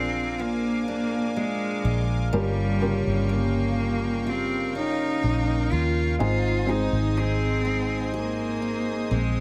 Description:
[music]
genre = pop ballad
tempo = 62 BPM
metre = 4/4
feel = straight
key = unclear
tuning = A4 = 441 Hz
[part]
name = clear cello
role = melody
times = 0.0-9.4 s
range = G3 to F4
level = -30 LUFS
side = equal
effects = analog delay
[part]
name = felt-muted upright piano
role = accompaniment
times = 0.0-9.4 s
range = G2 to C5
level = -34 LUFS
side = equal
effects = analog delay
[part]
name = pipe organ, strings celeste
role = sustained chords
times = 0.0-9.4 s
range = Bb4 to Eb6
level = -39 LUFS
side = equal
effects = none
[part]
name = picked steel-string acoustic guitar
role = arpeggios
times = 0.0-9.4 s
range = Ab2 to Ab4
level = -34 LUFS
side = equal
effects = analog delay
[part]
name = vintage muted fingered electric bass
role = bass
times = 0.0-9.4 s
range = G1 to Eb2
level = -29 LUFS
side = equal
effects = none
[sound]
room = light reverb, studio reverb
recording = echo-heavy mix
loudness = -25 LUFS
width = mono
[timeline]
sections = 0.0-9.4 A section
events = none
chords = 0.0 Bb7; 2.3 Gm7b5; 6.2 Ab

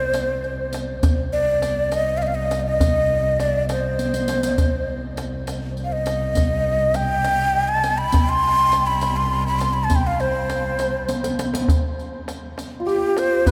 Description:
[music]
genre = Persian modal ensemble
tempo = 68 BPM (dotted quarters)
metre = 6/8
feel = straight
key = C avaz esfahan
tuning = A4 = 440 Hz
[part]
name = breathy ney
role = melody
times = 0.0-13.5 s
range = G4 to C6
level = -23 LUFS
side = equal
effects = none
[part]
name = dark double bass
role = drone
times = 0.0-11.7 s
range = C2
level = -29 LUFS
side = equal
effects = none
[part]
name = riq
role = percussion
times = 0.1-13.5 s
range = none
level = -33 LUFS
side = equal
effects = none
[part]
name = tombak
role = percussion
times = 0.1-13.5 s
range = none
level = -26 LUFS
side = equal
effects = none
[part]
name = santur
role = second line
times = 12.8-13.5 s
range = F4 to B4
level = -25 LUFS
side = equal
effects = none
[sound]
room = wet cathedral reverb, RT60 7.1 s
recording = in a vast, echoing space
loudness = -21 LUFS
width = mono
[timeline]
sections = 0.0-11.7 A section; 11.7-13.5 B section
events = drum fill 4.0-4.6, 11.1-11.7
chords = none

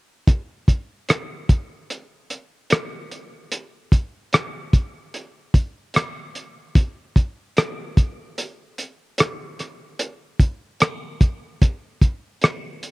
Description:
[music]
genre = soul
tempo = 74 BPM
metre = 4/4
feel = straight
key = none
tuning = none
[part]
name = cloth-damped thuddy drum kit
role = drums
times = 0.3-12.9 s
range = hi-hat, kick drum, rim click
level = -17 LUFS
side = equal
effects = none
[sound]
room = little or no reverb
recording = dry, close 1970s-style studio recording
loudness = -20 LUFS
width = side -25 dB against mid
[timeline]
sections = 0.3-12.9 A section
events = none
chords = none

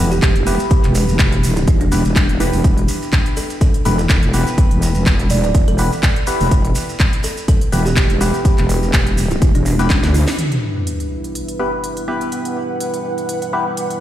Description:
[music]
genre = bass house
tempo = 124 BPM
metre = 4/4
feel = swing 55% on 16ths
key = E minor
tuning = A4 = 440 Hz
[part]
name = percussive organ stab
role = stabs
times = 0.0-13.7 s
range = B3 to B4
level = -24 LUFS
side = left 2 dB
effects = chorus, phaser, sidechain pumping, digital delay
[part]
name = wobble bass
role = bass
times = 0.0-10.3 s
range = E1 to D2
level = -16 LUFS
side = equal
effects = chorus, overdrive, sidechain pumping
[part]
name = kalimba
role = melody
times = 0.1-10.4 s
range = D4 to D5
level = -25 LUFS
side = right 2 dB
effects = digital delay
[part]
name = maracas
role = percussion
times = 0.1-10.4 s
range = none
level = -30 LUFS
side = right 3 dB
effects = none
[part]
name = electronic kick drum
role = drums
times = 0.2-10.0 s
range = none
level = -14 LUFS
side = equal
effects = none
[part]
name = house drum kit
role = drums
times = 0.2-14.0 s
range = handclaps, hi-hat, snare drum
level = -24 LUFS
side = equal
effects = none
[part]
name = dark analog pad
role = sustained chords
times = 10.4-14.0 s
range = G3 to B4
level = -26 LUFS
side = right 1 dB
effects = chorus, sidechain pumping
[part]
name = sub drop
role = sound effects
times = 10.4-12.3 s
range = none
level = -23 LUFS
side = equal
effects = none
[part]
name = ethereal airy pad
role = texture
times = 11.0-14.0 s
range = E4 to F#5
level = -27 LUFS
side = right 2 dB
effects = ensemble chorus, built-in reverb, sidechain pumping
[sound]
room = light reverb, digital ambience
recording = played on a big sound system in a bare room, stone room reverb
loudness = -14 LUFS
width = side -12 dB against mid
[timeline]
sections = 0.0-10.4 A section; 10.4-14.0 B section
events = filter sweep on wobble bass 0.0-10.4; drum fill 9.9-10.4; band accent 10.3; impact 10.4-12.3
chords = 0.0 Em

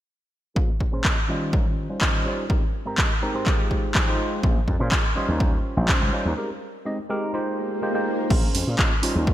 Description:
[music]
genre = filtered disco house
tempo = 124 BPM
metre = 4/4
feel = straight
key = Bb dorian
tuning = A4 = 440 Hz
[part]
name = bell-like tine electric piano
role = accompaniment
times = 0.6-9.3 s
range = G3 to G5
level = -28 LUFS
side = equal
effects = phaser, sidechain pumping, low-pass filter
[part]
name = electric guitar with an envelope filter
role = riff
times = 0.6-9.3 s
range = Ab2 to Eb5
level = -32 LUFS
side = right 1 dB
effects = sidechain pumping, low-pass filter
[part]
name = electronic kick drum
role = drums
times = 0.6-9.3 s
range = none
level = -22 LUFS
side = equal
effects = none
[part]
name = punchy analog drum machine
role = drums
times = 1.0-9.1 s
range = crash cymbal, handclaps, hi-hat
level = -26 LUFS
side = equal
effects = sidechain pumping on cymbals, sidechain pumping on hats, gated reverb
[part]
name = gritty slap bass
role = bass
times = 4.4-9.3 s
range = Bb1 to Bb2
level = -25 LUFS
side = equal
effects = overdrive, sidechain pumping, low-pass filter
[part]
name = swell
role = sound effects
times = 7.5-8.3 s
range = none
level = -30 LUFS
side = right 1 dB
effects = none
[part]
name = muted trumpet section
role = melody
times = 8.3-8.5 s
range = Bb4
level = -45 LUFS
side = right 2 dB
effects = none
[sound]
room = light reverb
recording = bright 1980s-style digital production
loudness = -21 LUFS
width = side -13 dB against mid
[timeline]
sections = 0.6-8.3 A section; 8.3-9.3 B section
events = filter sweep 0.6-8.3; break 6.4-8.3; swell 7.5-8.3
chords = 0.6 Bbm9; 1.3 Eb13; 2.5 Abmaj9; 3.5 Fm9; 4.4 Bbm9; 5.2 Eb13; 6.4 Abmaj9; 7.3 Fm9; 8.3 Bbm9

